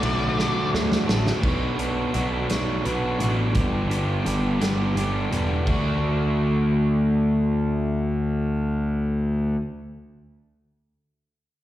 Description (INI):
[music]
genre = indie rock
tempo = 57 BPM (dotted quarters)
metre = 6/8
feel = straight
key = D major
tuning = A4 = 440 Hz
[part]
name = octave-fuzz lead guitar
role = melody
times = 0.0-0.7 s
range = D5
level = -29 LUFS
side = left 2 dB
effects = distortion, slapback echo
[part]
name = crunchy overdriven guitar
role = riff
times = 0.0-9.6 s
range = G2 to G4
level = -26 LUFS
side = equal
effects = none
[part]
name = fuzz picked electric bass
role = bass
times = 0.0-9.6 s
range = E1 to D2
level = -23 LUFS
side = equal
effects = overdrive
[part]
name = loose indie drum kit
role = drums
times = 0.0-5.8 s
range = crash cymbal, hi-hat, kick drum, ride cymbal, snare drum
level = -28 LUFS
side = equal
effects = none
[sound]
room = studio ambience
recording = live gig heard through the venue's PA, recital hall reverb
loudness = -21 LUFS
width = side -13 dB against mid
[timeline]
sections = 0.0-1.4 A section; 1.4-5.7 B section; 5.7-9.9 C section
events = drum fill 0.4-1.4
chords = 0.0 D; 3.5 G; 5.7 D